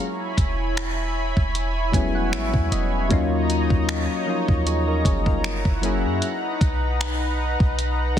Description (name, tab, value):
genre	contemporary R&B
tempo	77 BPM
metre	4/4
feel	swing 54% on 16ths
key	unclear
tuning	A4 = 440 Hz
part	lush unison pad	sustained chords	0.0-8.2 s	Eb4 to B5	-27 LUFS	equal	chorus, sidechain pumping
part	clean 808-style bass	bass	0.4-8.2 s	E1 to Gb2	-24 LUFS	equal	none
part	crisp 8-bit digital drum machine	drums	0.4-8.2 s	finger snaps, hi-hat, kick drum	-24 LUFS	equal	soft clipping on snare
part	soft electric-piano-like synth keys	accompaniment	1.9-6.2 s	F3 to G#5	-25 LUFS	left 3 dB	chorus
room	light reverb, digital ambience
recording	dense, heavily limited modern master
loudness	-20 LUFS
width	side -10 dB against mid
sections	0.0-8.2 A section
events	synth keys fill 1.5-3.1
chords	0.0 E6; 3.1 Ebm7; 5.4 Gb7; 6.2 Bmaj7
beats	0.77 1.55 2.33 | 3.11 3.89 4.67 5.45 | 6.22 7.00 7.78